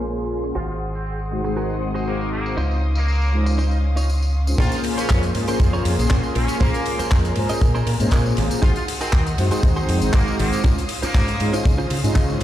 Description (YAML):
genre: nu-disco, nu disco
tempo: 119 BPM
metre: 4/4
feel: straight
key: Bb minor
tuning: A4 = 443 Hz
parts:
  - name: mellow synth brass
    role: accompaniment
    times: 0.0-12.4 s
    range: Ab3 to C6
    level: -25 LUFS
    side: left 1 dB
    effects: chorus, sidechain pumping, tape echo
  - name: muted studio string section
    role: sustained chords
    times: 0.0-12.4 s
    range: Db4 to Eb6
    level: -32 LUFS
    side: right 1 dB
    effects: sidechain pumping
  - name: direct-recorded clean electric guitar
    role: riff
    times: 0.0-12.4 s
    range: Db4 to Eb5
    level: -30 LUFS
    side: right 2 dB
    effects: wide subtle chorus, low-pass filter, tape echo
  - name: fingered electric bass with an envelope filter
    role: bass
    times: 0.0-12.4 s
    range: Ab1 to Db3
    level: -22 LUFS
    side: equal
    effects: none
  - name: damped 70s drum kit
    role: drums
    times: 0.1-12.4 s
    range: crash cymbal, handclaps, hi-hat, ride cymbal, tambourine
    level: -30 LUFS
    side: equal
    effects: low-pass filter on hats, studio reverb, low-pass filter on toms, low-pass filter on cymbals, low-pass filter on snare, low-pass filter on perc, low-pass filter on room
  - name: muted trumpet section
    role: melody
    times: 0.6-11.5 s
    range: Bb3 to F4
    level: -31 LUFS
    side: equal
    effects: tape echo
  - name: kick drum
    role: drums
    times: 4.6-12.3 s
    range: none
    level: -18 LUFS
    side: equal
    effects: studio reverb
room: light reverb, studio reverb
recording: played on a big sound system in a bare room, stone room reverb, low-pass filter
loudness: -18 LUFS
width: side -12 dB against mid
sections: 0.0-4.6 A section; 4.6-12.4 B section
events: filter sweep on clean electric guitar 0.0-4.6; filter sweep on string section 0.0-4.6; filter sweep 0.0-4.6; drop 4.6-12.4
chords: 0.0 Bbm9; 0.6 Ab7; 2.6 Dbmaj9; 4.6 Bbm9; 8.6 Ab7; 10.6 Dbmaj9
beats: 0.05 | 0.56 1.06 1.57 2.07 | 2.58 3.08 3.58 4.09 | 4.59 5.10 5.60 6.11 | 6.61 7.11 7.62 8.12 | 8.63 9.13 9.63 10.14 | 10.64 11.15 11.65 12.15